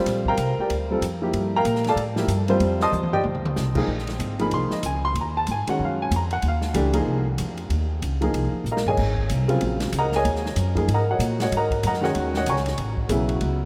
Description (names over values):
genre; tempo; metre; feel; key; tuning
modal jazz; 189 BPM; 4/4; swing 61% on 8ths; G minor, Bb minor from 3.9 s; A4 = 438 Hz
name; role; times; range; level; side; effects
warm baby grand piano; accompaniment; 0.0-13.6 s; Db3 to Eb6; -26 LUFS; equal; none
upright bass; bass; 0.0-13.7 s; Ab1 to Bb2; -27 LUFS; equal; none
open jazz drum kit; drums; 0.1-13.5 s; crash cymbal, hi-hat, kick drum, ride cymbal, snare drum, toms; -34 LUFS; equal; none
room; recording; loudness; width
wet cathedral reverb, RT60 6.1 s; in a vast, echoing space; -23 LUFS; mono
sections
0.0-3.9 A section; 3.9-13.7 A section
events
drum fill 2.9-3.6, 8.7-9.0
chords
0.0 Gm9; 2.6 F13; 3.9 Bb9sus4; 9.0 Ab9sus4; 12.8 A69